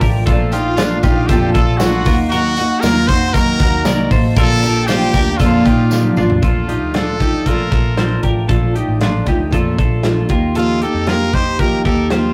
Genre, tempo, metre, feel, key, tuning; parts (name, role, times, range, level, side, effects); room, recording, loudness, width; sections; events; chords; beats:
jangly indie pop; 116 BPM; 4/4; straight; Bb major; A4 = 439 Hz
fingerpicked twelve-string acoustic guitar; accompaniment; 0.0-12.3 s; Bb2 to G4; -20 LUFS; equal
twelve-string electric guitar; arpeggios; 0.0-12.3 s; Bb3 to D5; -25 LUFS; equal
vintage muted picked electric bass; bass; 0.0-12.3 s; A1 to Bb2; -22 LUFS; equal
modern studio drum kit; drums; 0.0-12.2 s; hi-hat, kick drum, snare drum, toms; -20 LUFS; equal
tambourine; percussion; 0.0-6.3 s; -37 LUFS; equal
brilliant trumpet; melody; 0.5-12.3 s; F4 to C5; -23 LUFS; equal
warm studio violin section; second line; 0.5-6.2 s; F5 to C6; -29 LUFS; equal
wet booth ambience, RT60 0.2 s; rough rehearsal-room recording, warm saturation; -15 LUFS; mono
0.0-6.4 A section; 6.4-12.3 B section
drum fill 5.9-6.4
0.0 Bbmaj7; 2.1 Ebm; 4.4 Bbmaj7
| 0.27 0.78 1.29 1.80 | 2.32 2.83 3.34 3.85 | 4.37 4.88 5.40 5.91 | 6.43 6.94 7.46 7.97 | 8.49 9.01 9.53 10.04 | 10.56 11.08 11.60 12.11